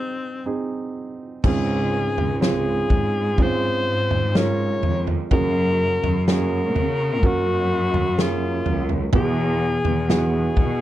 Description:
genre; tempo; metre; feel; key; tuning
pop ballad; 62 BPM; 4/4; straight; Db major; A4 = 435 Hz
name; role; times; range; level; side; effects
bright alto saxophone; melody; 0.0-10.8 s; C4 to Db5; -24 LUFS; left 3 dB; none
warm baby grand piano; accompaniment; 0.0-10.8 s; Ab2 to Bb4; -25 LUFS; right 4 dB; none
clear studio cello section; bass; 1.4-10.8 s; Db2 to Db3; -24 LUFS; equal; none
natural country drum kit; drums; 1.4-10.8 s; crash cymbal, kick drum, snare drum, toms; -22 LUFS; equal; none
room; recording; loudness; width
little or no reverb; none; -19 LUFS; side -13 dB against mid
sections
0.0-1.4 A section; 1.4-10.8 B section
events
break 0.0-1.4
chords
0.0 Ab; 1.4 Dbmaj7; 5.3 Gbadd9; 9.1 Eadd9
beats
0.46 | 1.44 2.42 3.38 4.35 | 5.31 6.28 7.23 8.19 | 9.14 10.09

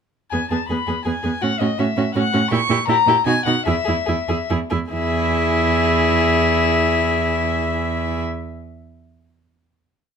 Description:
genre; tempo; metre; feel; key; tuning
quick classical-period movement for string quartet; 140-167 BPM; 3/4; straight; E major; A4 = 440 Hz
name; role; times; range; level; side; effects
dark violin; melody; 0.3-8.2 s; D#5 to C#6; -21 LUFS; left 7 dB; none
warm violin; second line; 0.3-8.2 s; F#4 to G#4; -26 LUFS; left 3 dB; none
rich viola; accompaniment; 0.3-8.2 s; B3 to E4; -24 LUFS; right 4 dB; none
rich cello; bass; 0.3-8.2 s; E2 to B2; -22 LUFS; right 5 dB; none
room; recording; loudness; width
light reverb; none; -17 LUFS; side -7 dB against mid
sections
0.3-4.9 A section; 4.9-7.4 final chord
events
slowing down 2.0-4.9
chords
0.3 E; 1.4 F#m/A; 2.5 A#dim7; 3.3 B; 3.7 E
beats
| 0.32 0.69 1.06 | 1.43 1.79 2.15 | 2.52 2.88 3.27 | 3.67 4.08 4.50 | 4.92 5.35 5.76 | 6.18 6.61 7.03

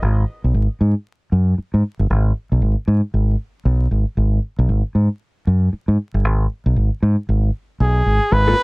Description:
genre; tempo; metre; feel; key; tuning
funk; 116 BPM; 4/4; swing 60% on 16ths; G# minor; A4 = 440 Hz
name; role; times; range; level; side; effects
fingered electric bass; bass; 0.0-8.5 s; G1 to G#2; -15 LUFS; equal; none
warm trumpet; melody; 7.8-8.6 s; G#4 to B4; -19 LUFS; right 1 dB; none
hollow-body jazz guitar; accompaniment; 8.3-8.6 s; B3 to A#4; -23 LUFS; left 3 dB; none
room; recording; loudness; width
little or no reverb; vinyl crackle; -16 LUFS; side -31 dB against mid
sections
0.0-8.3 A section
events
none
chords
none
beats
| 0.03 0.54 1.06 1.58 | 2.10 2.62 3.13 3.65 | 4.17 4.69 5.21 5.73 | 6.25 6.76 7.28 7.80 | 8.31

